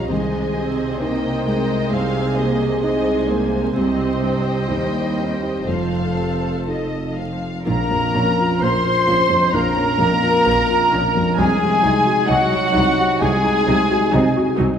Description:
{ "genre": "cinematic, emotional film score for orchestra", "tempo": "65 BPM", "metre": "4/4", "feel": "rubato", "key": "unclear", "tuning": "A4 = 442 Hz", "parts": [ { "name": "muted studio violin section", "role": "melody", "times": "0.0-14.6 s", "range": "Eb5 to C6", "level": "-24 LUFS", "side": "left 2 dB", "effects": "none" }, { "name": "warm French horn", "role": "melody", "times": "0.0-7.2 s", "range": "Eb4 to Bb4", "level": "-26 LUFS", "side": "right 1 dB", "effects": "none" }, { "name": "muted symphonic violin section", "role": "second line", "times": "0.0-14.6 s", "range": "Gb4 to F5", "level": "-26 LUFS", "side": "left 2 dB", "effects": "none" }, { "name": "felt-muted upright piano", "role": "accompaniment", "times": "0.0-14.8 s", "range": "Bb1 to Eb5", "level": "-23 LUFS", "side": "equal", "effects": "none" }, { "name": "muted symphonic viola section", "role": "accompaniment", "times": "0.0-14.7 s", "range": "Gb3 to A4", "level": "-27 LUFS", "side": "right 2 dB", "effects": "none" }, { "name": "concert harp", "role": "arpeggios", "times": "0.0-14.8 s", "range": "Bb2 to Eb5", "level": "-28 LUFS", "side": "left 4 dB", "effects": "none" }, { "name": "muted symphonic cello section", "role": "bass", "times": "0.0-14.7 s", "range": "Eb2 to C3", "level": "-26 LUFS", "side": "right 3 dB", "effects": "none" }, { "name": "muted symphonic double bass section", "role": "bass", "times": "0.0-14.7 s", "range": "F1 to Eb2", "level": "-27 LUFS", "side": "right 2 dB", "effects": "none" }, { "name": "mellow cor anglais", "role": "second line", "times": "7.7-14.6 s", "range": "Gb4 to C5", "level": "-24 LUFS", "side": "right 2 dB", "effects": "none" }, { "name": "mellow hollow flute section", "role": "second line", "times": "7.7-14.6 s", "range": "Gb5 to C6", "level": "-24 LUFS", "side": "right 1 dB", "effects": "none" }, { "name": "dark French horn section", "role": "sustained chords", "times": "7.7-14.6 s", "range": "Gb3 to C5", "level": "-24 LUFS", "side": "left 2 dB", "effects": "none" } ], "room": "wet scoring stage reverb, RT60 1.6 s", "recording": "minimal, uncompressed stereo recording, vinyl crackle", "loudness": "-16 LUFS", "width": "side -8 dB against mid", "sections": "0.0-7.7 A section; 7.7-14.8 B section", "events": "none", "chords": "0.1 Ab/C; 3.8 Cm; 5.7 F7; 7.7 Bbm; 11.4 Ab7/C" }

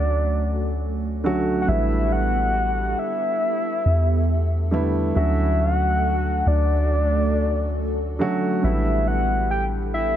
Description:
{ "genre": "contemporary R&B", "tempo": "69 BPM", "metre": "4/4", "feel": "straight", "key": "D major", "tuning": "A4 = 440 Hz", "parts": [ { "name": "soft octave-layered synth lead", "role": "melody", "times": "0.0-10.2 s", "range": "D5 to G5", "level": "-25 LUFS", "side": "left 1 dB", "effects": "chorus, analog delay" }, { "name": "dark grand piano", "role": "accompaniment", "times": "0.0-10.2 s", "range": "C#3 to F#4", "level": "-26 LUFS", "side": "right 2 dB", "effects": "analog delay" }, { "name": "hollow soft pad", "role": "sustained chords", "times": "0.0-10.2 s", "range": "A3 to A4", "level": "-30 LUFS", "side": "right 1 dB", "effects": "ensemble chorus, tremolo" }, { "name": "soft 808-style bass", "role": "bass", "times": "0.0-10.2 s", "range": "A1 to D3", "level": "-22 LUFS", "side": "equal", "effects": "none" }, { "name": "impact", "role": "sound effects", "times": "0.0-1.7 s", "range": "none", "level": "barely audible", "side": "none", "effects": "none" } ], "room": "light reverb", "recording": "echo-heavy mix", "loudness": "-19 LUFS", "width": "side -10 dB against mid", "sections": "0.0-10.2 A section", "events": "impact 0.0-1.7", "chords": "0.0 Dmaj7; 1.7 A9sus4; 5.2 Dmaj7; 8.6 A9sus4" }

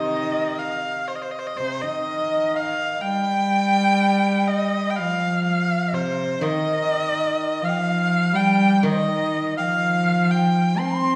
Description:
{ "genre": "chinese traditional, Chinese chamber ensemble", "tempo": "62 BPM", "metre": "4/4", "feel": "straight", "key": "unclear", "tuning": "A4 = 442 Hz", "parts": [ { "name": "rich erhu", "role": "melody", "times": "0.0-11.2 s", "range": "C5 to C6", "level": "-26 LUFS", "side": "equal", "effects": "none" }, { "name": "large dizi", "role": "second line", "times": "0.0-11.2 s", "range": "C5 to C6", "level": "-30 LUFS", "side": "equal", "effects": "none" }, { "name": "rich cello", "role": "second line", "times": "0.0-11.2 s", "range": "C3 to C4", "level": "-25 LUFS", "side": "equal", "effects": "none" }, { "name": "steel-string zither", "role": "accompaniment", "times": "0.0-11.2 s", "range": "C3 to Eb3", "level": "-33 LUFS", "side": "equal", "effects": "none" } ], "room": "wet recital hall reverb, RT60 1.7 s", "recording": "heard from further back in the room", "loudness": "-22 LUFS", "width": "mono", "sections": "0.0-11.2 A section", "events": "none", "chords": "none" }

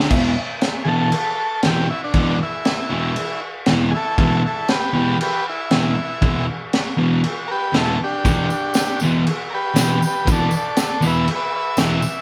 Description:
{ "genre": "garage rock duo or trio", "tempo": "118 BPM", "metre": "4/4", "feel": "straight", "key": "E minor", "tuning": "A4 = 440 Hz", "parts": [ { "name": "fuzz guitar", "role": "riff", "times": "0.0-12.0 s", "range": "E2 to D4", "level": "-22 LUFS", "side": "equal", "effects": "distortion" }, { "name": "crunchy breakbeat drum kit", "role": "drums", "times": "0.0-11.9 s", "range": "crash cymbal, kick drum, snare drum", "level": "-24 LUFS", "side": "equal", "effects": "none" }, { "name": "overdriven combo organ", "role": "melody", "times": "0.8-12.2 s", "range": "D4 to E5", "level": "-25 LUFS", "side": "equal", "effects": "none" }, { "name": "tambourine", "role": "percussion", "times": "8.3-12.2 s", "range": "none", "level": "-35 LUFS", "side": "equal", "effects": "none" } ], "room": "moderate studio reverb, RT60 0.7 s", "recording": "band playing live in one room", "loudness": "-19 LUFS", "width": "mono", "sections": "0.1-12.2 A section", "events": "transistor combo organ solo 0.1-12.2", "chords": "0.1 Em" }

